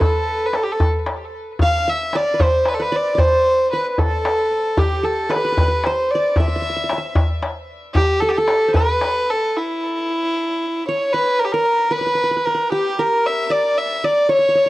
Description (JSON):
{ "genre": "Arabic maqam ensemble", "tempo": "76 BPM (dotted quarters)", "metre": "6/8", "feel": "straight", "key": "E maqam kurd", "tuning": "A4 = 440 Hz", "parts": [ { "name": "rich violin", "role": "melody", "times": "0.0-14.7 s", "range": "E4 to F5", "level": "-18 LUFS", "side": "equal", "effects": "tape echo" }, { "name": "qanun", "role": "second line", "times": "0.0-14.7 s", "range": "G4 to F5", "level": "-23 LUFS", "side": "right 1 dB", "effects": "none" }, { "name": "darbuka", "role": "percussion", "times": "0.0-9.1 s", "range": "none", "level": "-19 LUFS", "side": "left 1 dB", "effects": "none" } ], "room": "moderate studio reverb, RT60 0.6 s", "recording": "cassette tape", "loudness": "-16 LUFS", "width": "side -17 dB against mid", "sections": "0.0-11.1 A section; 11.1-14.7 B section", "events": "stop 9.5-11.1", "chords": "none" }